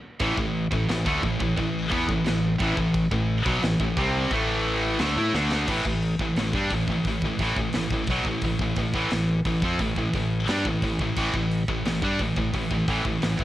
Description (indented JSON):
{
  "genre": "heavy metal",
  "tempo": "88 BPM",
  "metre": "4/4",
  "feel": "straight",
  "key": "A minor",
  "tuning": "A4 = 440 Hz",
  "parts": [
    { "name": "crunchy overdriven guitar", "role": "riff", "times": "0.2-5.7 s", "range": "A2 to E4", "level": "-32 LUFS", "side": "left 1 dB", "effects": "cassette tape" },
    { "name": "heavy high-gain guitar", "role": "riff", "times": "0.2-13.4 s", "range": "A2 to E4", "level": "-28 LUFS", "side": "left 5 dB", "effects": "distortion, cassette tape" },
    { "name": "high-gain distorted guitar", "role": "riff", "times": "0.2-13.4 s", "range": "A2 to E4", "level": "-27 LUFS", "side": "right 4 dB", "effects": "distortion, cassette tape" },
    { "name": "growling fingered electric bass", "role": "bass", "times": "0.2-13.4 s", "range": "A1 to A2", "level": "-30 LUFS", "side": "equal", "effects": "overdrive" },
    { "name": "tight metal drum kit", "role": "drums", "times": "0.2-13.4 s", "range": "crash cymbal, hi-hat, kick drum, snare drum", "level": "-31 LUFS", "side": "equal", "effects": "cassette tape" }
  ],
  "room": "small room ambience",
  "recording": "home recording on cassette",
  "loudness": "-22 LUFS",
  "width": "side -14 dB against mid",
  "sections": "0.0-5.7 A section; 5.7-13.4 B section",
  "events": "drum fill 5.3-5.7",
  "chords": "0.0 Am; 5.7 A5",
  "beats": "| 0.21 0.89 1.58 2.26 | 2.95 3.63 4.32 5.00 | 5.69 6.37 7.06 7.74 | 8.43 9.11 9.80 10.48 | 11.17 11.85 12.54 13.22"
}